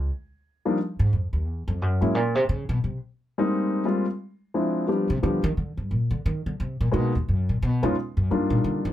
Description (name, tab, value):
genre	jazz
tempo	176 BPM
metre	4/4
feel	swing 62% on 8ths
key	unclear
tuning	A4 = 440 Hz
part	upright bass	bass	0.0-3.0, 5.1-8.9 s	Eb2 to F3	-23 LUFS	equal	none
part	warm grand piano	melody	0.7-8.9 s	F3 to G4	-24 LUFS	left 1 dB	none
room	light reverb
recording	close, detailed microphones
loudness	-23 LUFS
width	side -12 dB against mid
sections	0.1-8.9 A section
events	upright bass solo 0.1-8.9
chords	0.1 N.C.; 1.5 Dbm (rootless); 2.1 Bbmadd9; 2.8 Abmaj7; 4.2 Dm7b5; 4.9 G7; 5.6 Cm9; 6.9 Abm7; 7.6 Db7 (rootless); 8.3 Ebmaj7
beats	| 0.10 0.44 0.78 1.12 | 1.46 1.81 2.15 2.49 | 2.83 3.17 3.52 3.86 | 4.20 4.54 4.88 5.22 | 5.57 5.91 6.25 6.59 | 6.93 7.28 7.62 7.96 | 8.30 8.64